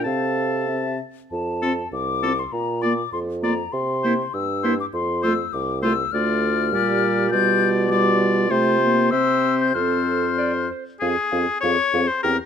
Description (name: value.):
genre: quick classical-period movement for wind quintet.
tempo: 94-102 BPM.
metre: 2/4.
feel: rubato.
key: F major.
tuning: A4 = 441 Hz.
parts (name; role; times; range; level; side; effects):
hollow concert flute; melody; 0.0-12.3 s; E5 to G6; -25 LUFS; left 9 dB; none.
bright oboe; second line; 0.0-12.4 s; Ab4 to A5; -24 LUFS; left 5 dB; none.
clear clarinet; accompaniment; 0.0-12.4 s; E4 to D5; -28 LUFS; right 8 dB; none.
dark French horn; accompaniment; 0.0-12.4 s; G3 to C4; -25 LUFS; left 1 dB; none.
dark bassoon; bass; 0.0-12.4 s; C2 to C3; -24 LUFS; right 3 dB; none.
room: light reverb.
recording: none.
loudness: -19 LUFS.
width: side -8 dB against mid.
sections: 0.0-1.3 A section; 1.3-11.0 B section; 11.0-12.5 C section.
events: none.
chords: 0.1 F/C; 1.3 F; 2.5 Bb; 3.7 C7; 4.9 F; 6.1 Dm; 6.7 Gm7/Bb; 7.3 G7/B; 8.5 F/C; 9.1 C; 9.7 F; 11.0 Fm.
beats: | 0.06 0.69 | 1.32 1.93 | 2.53 3.13 | 3.73 4.34 | 4.94 5.54 | 6.13 6.73 | 7.32 7.91 | 8.50 9.12 | 9.75 10.38 | 11.01 11.63 | 12.23.